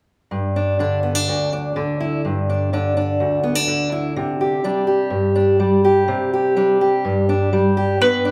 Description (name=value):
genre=folk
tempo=125 BPM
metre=4/4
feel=straight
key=G major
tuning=A4 = 440 Hz
part: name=fingerpicked steel-string acoustic guitar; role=accompaniment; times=0.3-8.3 s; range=D2 to G4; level=-19 LUFS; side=equal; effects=none
part: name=bowl-back mandolin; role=melody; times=8.0-8.3 s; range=B4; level=-17 LUFS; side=equal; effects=none
room=wet large studio reverb, RT60 1.0 s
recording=band playing live in one room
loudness=-19 LUFS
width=mono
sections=0.3-8.0 A section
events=none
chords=0.3 G5; 4.2 Csus2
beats=| 0.31 0.79 1.27 1.75 | 2.23 2.71 3.19 3.67 | 4.15 4.63 5.12 5.60 | 6.08 6.56 7.04 7.52 | 8.00